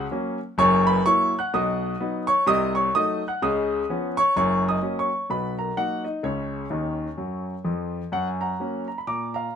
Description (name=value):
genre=jazz, stride piano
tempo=127 BPM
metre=4/4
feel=swing 59% on 8ths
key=F# major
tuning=A4 = 440 Hz
part: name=clear grand piano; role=solo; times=0.0-9.6 s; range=F#1 to F#6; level=-22 LUFS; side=equal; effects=none
room=moderate studio reverb, RT60 0.6 s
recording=minimal, uncompressed stereo recording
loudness=-22 LUFS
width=side -8 dB against mid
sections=0.0-8.1 A section; 8.1-9.6 B section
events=grand piano fill 6.7-8.1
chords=0.0 F#; 0.6 F#7; 1.5 B; 2.5 Cdim7; 3.4 C#9; 4.4 F#; 5.3 Bmaj7; 6.2 C#sus2; 7.2 C#; 8.1 F#